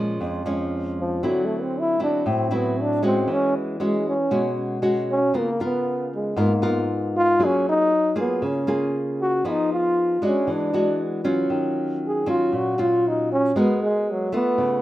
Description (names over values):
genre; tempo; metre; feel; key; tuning
bossa nova; 117 BPM; 4/4; straight; unclear; A4 = 440 Hz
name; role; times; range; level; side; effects
nylon-string guitar; accompaniment; 0.0-14.8 s; F2 to Bb4; -23 LUFS; equal; none
warm trombone; melody; 1.0-14.8 s; E3 to Ab4; -22 LUFS; equal; none
room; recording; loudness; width
moderate small room ambience, RT60 0.5 s; rough home demo mix; -20 LUFS; side -15 dB against mid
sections
0.0-14.8 A section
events
trombone solo 0.0-14.8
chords
0.0 Bbm7; 1.2 D9; 3.3 E69; 5.3 Db6; 7.4 Gbmaj9; 9.4 Fm7b5; 10.5 E9; 11.5 Ebm9; 13.6 Abm9